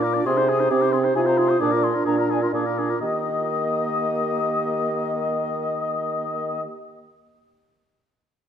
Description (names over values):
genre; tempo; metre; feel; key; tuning
quick classical-period movement for wind quintet; 129 BPM; 3/4; uneven beats; Eb major; A4 = 442 Hz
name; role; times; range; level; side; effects
mellow hollow silver concert flute; melody; 0.0-6.6 s; Ab5 to Eb6; -28 LUFS; left 8 dB; none
warm oboe; second line; 0.0-6.6 s; Ab4 to Eb5; -28 LUFS; left 3 dB; none
mellow clarinet; accompaniment; 0.0-6.6 s; C4 to G4; -29 LUFS; right 6 dB; none
warm French horn; accompaniment; 0.0-6.6 s; Bb3 to Ab4; -27 LUFS; equal; none
warm bassoon; bass; 0.0-6.6 s; Bb2 to Eb3; -24 LUFS; right 1 dB; none
room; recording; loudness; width
wet recital hall reverb, RT60 1.7 s; dark, warm production; -20 LUFS; side -8 dB against mid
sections
0.0-3.0 A section; 3.0-5.9 B section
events
slowing down 0.0-3.0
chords
0.3 Ab/C; 1.2 Fm7/C; 1.6 Bb7; 3.0 Eb